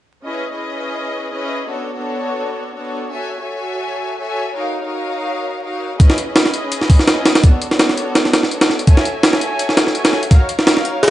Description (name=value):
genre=drum and bass, jungle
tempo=167 BPM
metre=4/4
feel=swing 54% on 16ths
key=unclear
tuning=A4 = 442 Hz
part: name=rich studio string section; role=sustained chords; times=0.3-11.1 s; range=B3 to G#5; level=-21 LUFS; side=left 1 dB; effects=none
part: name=breakbeat sampler-style drum kit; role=drums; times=6.0-11.1 s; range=hi-hat, kick drum, snare drum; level=-12 LUFS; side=equal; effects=small room reverb
room=light reverb, digital ambience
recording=vinyl crackle, nothing above 10.4 kHz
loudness=-14 LUFS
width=side -14 dB against mid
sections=0.3-11.1 A section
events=none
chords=0.3 C#m9; 1.7 Bm9; 3.1 F#m9; 4.6 D#m9; 6.0 C#m9; 7.4 Bm9; 8.9 F#m9; 10.3 D#m9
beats=| 0.25 0.61 0.97 1.33 | 1.69 2.05 2.41 2.77 | 3.13 3.48 3.84 4.20 | 4.56 4.92 5.28 5.64 | 6.00 6.36 6.72 7.08 | 7.44 7.80 8.16 8.52 | 8.87 9.23 9.59 9.95 | 10.31 10.67 11.03